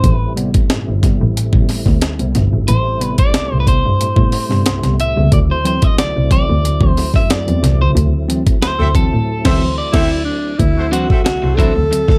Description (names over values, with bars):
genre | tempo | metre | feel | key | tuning
funk | 91 BPM | 4/4 | straight | unclear | A4 = 440 Hz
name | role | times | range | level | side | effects
electric guitar at the edge of break-up | accompaniment | 0.0-12.1 s | D4 to F#5 | -23 LUFS | equal | none
tonewheel organ | sustained chords | 0.0-12.2 s | F#3 to E5 | -29 LUFS | equal | slow rotary speaker, overdrive, chorus vibrato, plate reverb
mellow tine electric piano | stabs | 0.0-12.2 s | A2 to C4 | -25 LUFS | equal | slapback echo, plate reverb
warm double bass | bass | 0.0-12.2 s | G1 to A2 | -19 LUFS | equal | none
breakbeat sampler-style drum kit | drums | 0.0-12.2 s | crash cymbal, hi-hat, kick drum, snare drum | -17 LUFS | equal | none
warm horn section | second line | 8.8-11.7 s | F#3 to E5 | -28 LUFS | equal | plate reverb
breathy alto saxophone | melody | 9.9-12.2 s | D4 to A4 | -20 LUFS | equal | none
room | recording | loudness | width
light reverb | none | -15 LUFS | mono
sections
0.0-10.6 A section; 10.6-12.2 B section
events
clean electric guitar solo 0.0-10.6; band accent 8.0-10.6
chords
0.0 Am7; 5.3 D9